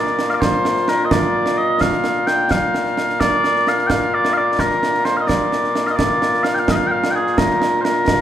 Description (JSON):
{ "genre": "scottish traditional, Scottish pipe music", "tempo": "86 BPM (dotted quarters)", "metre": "6/8", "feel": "straight", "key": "Bb major", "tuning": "A4 = 444 Hz", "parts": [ { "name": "mellow small bagpipes", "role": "melody", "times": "0.0-8.2 s", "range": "Bb2 to G5", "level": "-16 LUFS", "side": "left 1 dB", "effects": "none" }, { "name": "concert snare drum and concert bass drum", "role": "drums", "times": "0.1-8.2 s", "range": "none", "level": "-21 LUFS", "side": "right 2 dB", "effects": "none" } ], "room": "moderate scoring stage reverb, RT60 2.1 s", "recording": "recorded in a church or concert hall", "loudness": "-15 LUFS", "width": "side -10 dB against mid", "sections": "0.0-8.2 A section", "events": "none", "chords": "none", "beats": "| 0.41 1.10 | 1.80 2.50 | 3.20 3.89 | 4.59 5.29 | 5.99 6.68 | 7.38 8.08" }